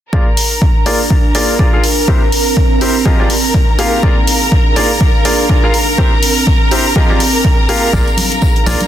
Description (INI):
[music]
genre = piano house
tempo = 123 BPM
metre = 4/4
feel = swing 58% on 16ths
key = Bb mixolydian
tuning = A4 = 440 Hz
[part]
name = clear symphonic string section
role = sustained chords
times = 0.1-8.9 s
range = Bb4 to Bb5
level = -18 LUFS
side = right 1 dB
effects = sidechain pumping, low-pass filter
[part]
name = bright upright piano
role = riff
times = 0.1-8.8 s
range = C3 to F5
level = -18 LUFS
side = left 1 dB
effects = sidechain pumping, low-pass filter, dub echo
[part]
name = electronic kick drum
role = drums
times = 0.1-8.5 s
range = none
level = -12 LUFS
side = equal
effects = none
[part]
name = deep dark ambient pad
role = texture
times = 0.8-8.9 s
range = C4 to G5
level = -19 LUFS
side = right 2 dB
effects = chorus, built-in reverb, sidechain pumping
[part]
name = electronic hi-hat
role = drums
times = 0.4-8.9 s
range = none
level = -18 LUFS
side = left 1 dB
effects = none
[part]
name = organ-like FM bass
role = bass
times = 7.9-8.8 s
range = Bb1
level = -16 LUFS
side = equal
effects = sidechain pumping
[part]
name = tambourine and congas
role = percussion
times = 7.9-8.9 s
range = none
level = -22 LUFS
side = equal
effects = none
[sound]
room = light reverb, small room ambience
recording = dense, heavily limited modern master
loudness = -9 LUFS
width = side -11 dB against mid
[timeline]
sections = 0.1-8.9 A section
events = none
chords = 0.1 Bb7; 1.8 C7; 3.1 Fm9; 4.0 Bb7; 5.7 C7; 7.0 Fm9; 7.9 Bb7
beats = | 0.13 0.62 1.10 1.59 | 2.08 2.57 3.06 3.54 | 4.03 4.52 5.01 5.50 | 5.98 6.47 6.96 7.45 | 7.93 8.42